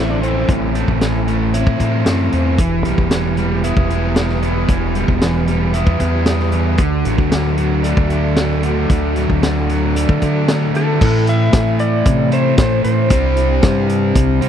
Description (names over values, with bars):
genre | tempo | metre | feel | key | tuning
classic rock | 114 BPM | 4/4 | straight | unclear | A4 = 444 Hz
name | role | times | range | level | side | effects
octave-fuzz lead guitar | second line | 0.0-0.5 s | C4 to D4 | -25 LUFS | left 2 dB | distortion
tonewheel organ | sustained chords | 0.0-14.5 s | A3 to D5 | -29 LUFS | left 1 dB | slow rotary speaker, overdrive, chorus vibrato
overdriven electric guitar | riff | 0.0-14.5 s | A2 to E4 | -21 LUFS | left 14 dB | none
overdriven electric guitar | riff | 0.0-14.5 s | A2 to E4 | -20 LUFS | right 14 dB | none
growling fingered electric bass | bass | 0.0-14.5 s | E1 to D3 | -18 LUFS | equal | overdrive
vintage drum kit | drums | 0.2-14.5 s | crash cymbal, hi-hat, kick drum, snare drum | -17 LUFS | equal | none
clean lap steel guitar | melody | 10.8-13.9 s | A4 to E5 | -20 LUFS | left 1 dB | slapback echo
room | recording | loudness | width
small room ambience | dry, close 1970s-style studio recording | -13 LUFS | side -9 dB against mid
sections
0.0-11.0 A section; 11.0-14.5 B section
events
none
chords
0.0 Am; 2.6 Em; 6.8 D; 11.0 Am; 13.1 Cadd9